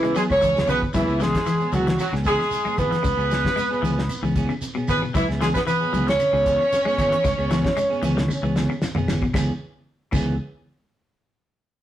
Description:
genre	afrobeat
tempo	114 BPM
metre	4/4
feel	swing 53% on 16ths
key	C# minor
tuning	A4 = 440 Hz
part	warm horn section	melody	0.0-8.8 s	E4 to C#5	-23 LUFS	right 1 dB	none
part	raspy tenor saxophone	second line	0.0-8.8 s	E3 to C#4	-27 LUFS	right 2 dB	none
part	clean electric guitar	arpeggios	0.0-10.3 s	B2 to G#3	-28 LUFS	left 4 dB	none
part	clean electric guitar	stabs	0.0-10.3 s	E3 to G#4	-30 LUFS	right 2 dB	none
part	fingered electric bass	bass	0.0-10.4 s	G#1 to C#3	-27 LUFS	equal	none
part	damped 70s drum kit	drums	0.0-10.3 s	crash cymbal, hi-hat, kick drum, snare drum, toms	-26 LUFS	left 1 dB	none
part	shekere	percussion	0.0-10.3 s	none	-37 LUFS	right 2 dB	none
part	congas	percussion	0.2-10.3 s	none	-32 LUFS	right 2 dB	none
part	claves	percussion	0.3-10.3 s	none	-42 LUFS	left 1 dB	none
room	moderate studio reverb, RT60 0.7 s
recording	rough rehearsal-room recording, warm saturation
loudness	-19 LUFS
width	side -12 dB against mid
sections	0.9-9.3 A section; 9.3-11.4 B section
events	drum fill 8.3-9.3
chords	0.0 C#m7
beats	0.42 | 0.95 1.47 2.00 2.52 | 3.04 3.57 4.09 4.62 | 5.14 5.67 6.19 6.72 | 7.24 7.77 8.29 8.82 | 9.34 9.87

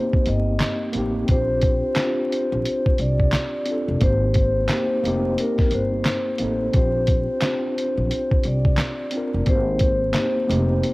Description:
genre	lo-fi hip hop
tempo	88 BPM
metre	4/4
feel	swing 61% on 16ths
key	Bb major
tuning	A4 = 440 Hz
part	vibraphone with soft mallets	melody	0.0-10.9 s	Bb4 to Eb5	-24 LUFS	left 1 dB	cassette tape
part	mellow tine electric piano	accompaniment	0.0-10.9 s	A3 to Bb4	-25 LUFS	equal	medium stereo tremolo, cassette tape
part	lo-fi sampler-style drum kit	drums	0.1-10.9 s	handclaps, hi-hat, kick drum, snare drum	-22 LUFS	equal	vintage 12-bit sampler grit, cassette tape
part	upright bass	bass	0.3-10.8 s	F1 to C2	-24 LUFS	equal	tube saturation
room	light reverb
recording	home recording on cassette, vinyl crackle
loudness	-19 LUFS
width	side -21 dB against mid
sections	0.0-10.9 A section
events	none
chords	0.0 F9sus4 (rootless); 1.3 Bb69; 4.0 Abmaj7; 5.0 F9sus4; 6.7 Bb69; 9.5 Abmaj7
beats	0.61 | 1.29 1.97 2.65 3.33 | 4.02 4.70 5.38 6.06 | 6.74 7.42 8.11 8.79 | 9.47 10.15 10.83

